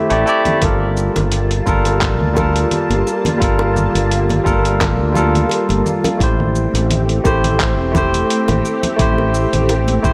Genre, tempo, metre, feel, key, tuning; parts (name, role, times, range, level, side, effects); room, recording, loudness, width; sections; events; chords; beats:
sunset chillout; 86 BPM; 4/4; swing 54% on 16ths; G dorian; A4 = 439 Hz
barky tine electric piano; accompaniment; 0.0-10.1 s; G3 to E5; -20 LUFS; equal; digital delay
soft string machine; sustained chords; 0.0-10.1 s; G3 to A5; -24 LUFS; equal; phaser, ensemble chorus
fretless electric bass; bass; 0.1-10.1 s; E1 to D2; -20 LUFS; equal
dusty soul sampler-style drum kit; drums; 0.1-10.1 s; cabasa, congas, handclaps, hi-hat; -25 LUFS; equal
congas and bongos; percussion; 0.5-10.0 s; -26 LUFS; equal
electronic kick drum; drums; 0.6-10.1 s; -22 LUFS; equal
light reverb; -16 LUFS; mono
0.6-10.1 A section
0.0 Am7; 0.6 Gm9; 6.2 Am7
| 0.62 1.32 2.02 2.71 | 3.41 4.11 4.81 5.50 | 6.20 6.90 7.60 8.29 | 8.99 9.69